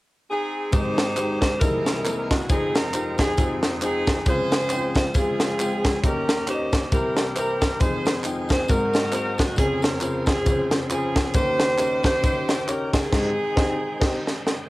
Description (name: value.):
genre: uptempo gospel.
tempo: 136 BPM.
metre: 4/4.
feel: swing 57% on 8ths.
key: Ab major.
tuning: A4 = 435 Hz.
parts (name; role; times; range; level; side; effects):
bright saxophone section; melody; 0.3-14.4 s; C4 to C5; -25 LUFS; equal; none.
warm upright piano; accompaniment; 0.7-14.2 s; F1 to G5; -27 LUFS; left 1 dB; cassette tape.
bright tonewheel organ; sustained chords; 0.7-14.7 s; Db3 to G5; -36 LUFS; right 1 dB; none.
crisp fusion drum kit; drums; 0.7-14.6 s; crash cymbal, hi-hat, kick drum, snare drum; -22 LUFS; equal; none.
tambourine and handclaps; percussion; 0.7-13.0 s; none; -36 LUFS; equal; none.
room: light reverb, small room ambience.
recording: home recording on cassette.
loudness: -20 LUFS.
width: side -19 dB against mid.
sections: 0.7-14.7 A section.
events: band accent 13.1-14.7; drum fill 14.0-14.7; upright piano fill 14.0-14.7.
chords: 0.0 Ab; 0.7 Abmaj7; 1.6 C7alt; 2.5 Fm7; 4.3 Dbmaj7; 6.0 Eb7; 6.9 C7; 7.8 Fm7; 8.7 Ab9; 9.6 Dbmaj7/F; 11.4 Eb7; 13.1 Abmaj7.